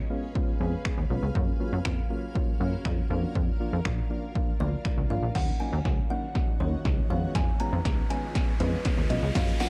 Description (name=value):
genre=dance-pop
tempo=120 BPM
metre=4/4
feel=straight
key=unclear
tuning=A4 = 440 Hz
part: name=granular cloud pad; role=sustained chords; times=0.0-9.7 s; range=Eb3 to Gb5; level=-43 LUFS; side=equal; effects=built-in reverb, sidechain pumping
part: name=soft electric-piano-like synth keys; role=accompaniment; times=0.1-9.7 s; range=F3 to Cb6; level=-37 LUFS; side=equal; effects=chorus, sidechain pumping
part: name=punchy analog drum machine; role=drums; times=0.4-9.7 s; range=crash cymbal, finger snaps, hi-hat, kick drum, shaker, snare drum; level=-30 LUFS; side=equal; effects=vintage 12-bit sampler grit
part: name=plucky analog bass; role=bass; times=0.6-9.5 s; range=Ab1 to Gb2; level=-32 LUFS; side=equal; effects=sidechain pumping
part: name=kalimba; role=melody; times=4.6-9.7 s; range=Cb5 to Bb5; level=-38 LUFS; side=equal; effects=none
part: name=riser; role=sound effects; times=6.5-9.7 s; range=none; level=-44 LUFS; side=equal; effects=none
part: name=tambourine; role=percussion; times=9.4-9.7 s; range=none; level=-45 LUFS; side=equal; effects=none
room=little or no reverb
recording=cassette tape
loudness=-28 LUFS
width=mono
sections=0.0-5.4 A section; 5.4-9.7 B section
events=synth keys fill 0.6-1.4; build-up 5.4-9.7; drum fill 5.4-9.7; riser 6.5-9.7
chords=0.0 Db7; 1.4 Gbmaj7; 3.1 Bb; 5.4 Ebm7; 7.1 Db7